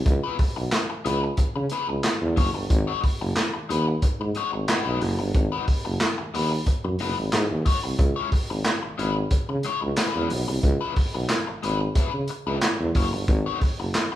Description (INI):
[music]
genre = funk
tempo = 91 BPM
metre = 4/4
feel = straight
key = C# minor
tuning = A4 = 441 Hz
[part]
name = warm tuba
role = bass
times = 0.0-14.2 s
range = F#1 to C#3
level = -27 LUFS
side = equal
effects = none
[part]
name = crunchy overdriven guitar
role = accompaniment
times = 0.1-14.2 s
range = G#3 to C#5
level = -30 LUFS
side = left 5 dB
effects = wah
[part]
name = crunchy breakbeat drum kit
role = drums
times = 0.1-14.1 s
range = handclaps, hi-hat, kick drum, snare drum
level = -23 LUFS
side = equal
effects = none
[sound]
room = moderate large studio reverb, RT60 0.9 s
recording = band playing live in one room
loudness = -22 LUFS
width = side -13 dB against mid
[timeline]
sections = 0.0-14.2 A section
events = none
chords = 0.0 C#m7; 2.7 G#m7; 8.0 C#m7; 13.3 G#m7